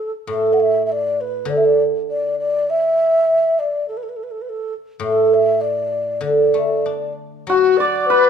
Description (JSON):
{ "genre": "chinese traditional, Chinese chamber ensemble", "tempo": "101 BPM", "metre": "4/4", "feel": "rubato", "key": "D gong mode", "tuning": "A4 = 440 Hz", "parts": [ { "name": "mellow hollow xiao", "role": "melody", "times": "0.0-8.3 s", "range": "F#4 to F#5", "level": "-19 LUFS", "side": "equal", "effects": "none" }, { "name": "guzheng", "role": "accompaniment", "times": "0.3-8.3 s", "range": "A2 to D4", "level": "-18 LUFS", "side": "right 3 dB", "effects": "none" }, { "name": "hammered dulcimer", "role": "second line", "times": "7.5-8.3 s", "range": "F#4 to D5", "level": "-16 LUFS", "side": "right 2 dB", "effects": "none" }, { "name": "mellow large dizi", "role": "second line", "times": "7.5-8.3 s", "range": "F#4 to D5", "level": "-15 LUFS", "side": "left 14 dB", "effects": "none" } ], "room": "light reverb", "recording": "minimal, uncompressed stereo recording", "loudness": "-15 LUFS", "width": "side -7 dB against mid", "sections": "0.0-7.5 A section", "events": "none", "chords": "none" }